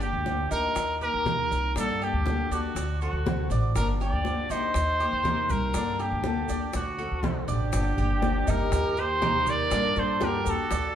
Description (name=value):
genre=latin, Cuban son and guajira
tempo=121 BPM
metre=4/4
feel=straight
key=G minor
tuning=A4 = 442 Hz
part: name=clear trumpet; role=melody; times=0.0-10.9 s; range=F#4 to D5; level=-28 LUFS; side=right 1 dB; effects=none
part: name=fingerpicked steel-string acoustic guitar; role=accompaniment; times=0.0-10.7 s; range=D3 to A4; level=-34 LUFS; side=left 5 dB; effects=none
part: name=Cuban tres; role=arpeggios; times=0.0-10.9 s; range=D4 to D5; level=-34 LUFS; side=right 1 dB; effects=none
part: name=upright bass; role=bass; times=0.0-10.9 s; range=G1 to G2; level=-29 LUFS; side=equal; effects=none
part: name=bongos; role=percussion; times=0.0-10.9 s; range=none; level=-36 LUFS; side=left 2 dB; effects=none
part: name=congas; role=percussion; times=0.0-10.9 s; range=none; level=-35 LUFS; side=right 1 dB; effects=none
part: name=maracas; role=percussion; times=0.0-10.9 s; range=none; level=-45 LUFS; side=right 5 dB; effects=none
part: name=breathy bright concert flute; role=second line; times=7.5-10.9 s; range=D4 to Bb4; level=-33 LUFS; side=right 2 dB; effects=none
room=wet large studio reverb, RT60 1.2 s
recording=band playing live in one room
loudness=-24 LUFS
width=side -10 dB against mid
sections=0.0-7.7 A section; 7.7-10.9 B section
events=none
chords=0.0 Gm7; 0.8 Eb; 1.8 Gmadd9; 2.8 D7; 3.8 Gm7; 4.8 Eb; 5.7 Gmadd9; 6.7 D7; 7.7 Gm7; 8.7 Eb; 9.7 Gmadd9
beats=0.26 0.76 1.26 | 1.76 2.26 2.76 3.26 | 3.76 4.25 4.75 5.25 | 5.75 6.25 6.74 7.24 | 7.74 8.23 8.73 9.22 | 9.72 10.21 10.71